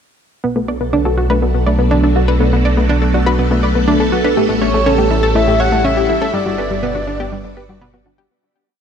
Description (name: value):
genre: ambient, sequencer-driven space music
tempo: 122 BPM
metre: 4/4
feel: straight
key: B minor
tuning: A4 = 440 Hz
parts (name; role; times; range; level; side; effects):
- phased string machine; sustained chords; 0.4-8.3 s; F#3 to B4; -18 LUFS; equal; ensemble chorus, phaser, shimmer reverb
- analog pluck; riff; 0.4-8.2 s; G3 to D5; -18 LUFS; right 1 dB; chorus, shimmer reverb, ping-pong delay
- warm sub bass; bass; 0.4-8.3 s; G1 to B1; -18 LUFS; equal; none
- soft round pluck; arpeggios; 0.6-8.3 s; A3 to G4; -22 LUFS; left 3 dB; chorus, auto-pan, cassette tape, shimmer reverb, ping-pong delay
- breathy flute-like synth lead; melody; 4.6-7.8 s; A4 to F#5; -18 LUFS; left 1 dB; chorus, cassette tape, shimmer reverb, ping-pong delay
room: moderate plate reverb, RT60 3.3 s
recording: cassette tape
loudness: -12 LUFS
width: side -7 dB against mid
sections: 0.4-8.3 A section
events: fade-out 5.7-8.3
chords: 0.4 Bm7; 4.4 A7; 6.3 Gmaj7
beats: | 0.44 0.93 1.42 1.91 | 2.40 2.90 3.39 3.88 | 4.37 4.86 5.35 5.84 | 6.34 6.83 7.32 7.81